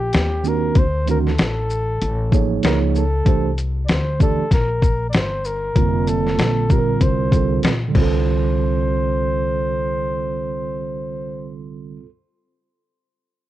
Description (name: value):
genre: hip hop, jazz-hop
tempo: 96 BPM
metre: 4/4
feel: swing 58% on 16ths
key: C dorian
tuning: A4 = 441 Hz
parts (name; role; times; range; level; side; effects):
- mellow flugelhorn; melody; 0.0-11.5 s; G4 to D5; -24 LUFS; left 1 dB; cassette tape
- upright bass; bass; 0.0-12.0 s; F1 to Eb2; -22 LUFS; left 1 dB; none
- boom bap sampler-style drum kit; drums; 0.1-8.1 s; crash cymbal, hi-hat, kick drum, shaker, snare drum; -18 LUFS; left 1 dB; none
- mellow tine electric piano; accompaniment; 0.4-12.1 s; D3 to D5; -22 LUFS; right 7 dB; medium stereo tremolo
room: little or no reverb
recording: home recording on cassette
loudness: -17 LUFS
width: side -14 dB against mid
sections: 0.0-8.3 A section; 8.3-10.8 B section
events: none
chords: 0.1 Eb; 0.8 D7b9; 2.6 Dbadd9; 3.3 C9; 5.8 Fsus24; 7.0 Csus2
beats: 0.14 | 0.76 1.39 2.01 2.64 | 3.26 3.89 4.51 5.14 | 5.76 6.39 7.01 7.64 | 8.26 8.89 9.51 10.14